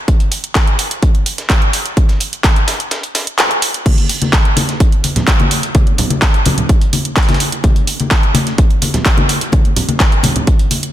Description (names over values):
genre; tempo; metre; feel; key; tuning
house; 127 BPM; 4/4; straight; none; none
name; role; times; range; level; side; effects
breakbeat sampler-style drum kit; drums; 0.1-10.8 s; hi-hat, snare drum; -26 LUFS; left 1 dB; high-pass filter on hats, high-pass filter on snare
electronic kick drum; drums; 0.1-10.6 s; none; -12 LUFS; equal; overdrive
house drum kit; drums; 0.1-10.9 s; crash cymbal, handclaps, hi-hat; -17 LUFS; right 1 dB; overdrive
congas; percussion; 3.9-10.8 s; none; -18 LUFS; left 1 dB; sidechain pumping on perc
room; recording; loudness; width
light reverb; dense, heavily limited modern master; -11 LUFS; side -12 dB against mid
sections
0.0-10.9 A section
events
kick drops out 2.9-3.9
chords
none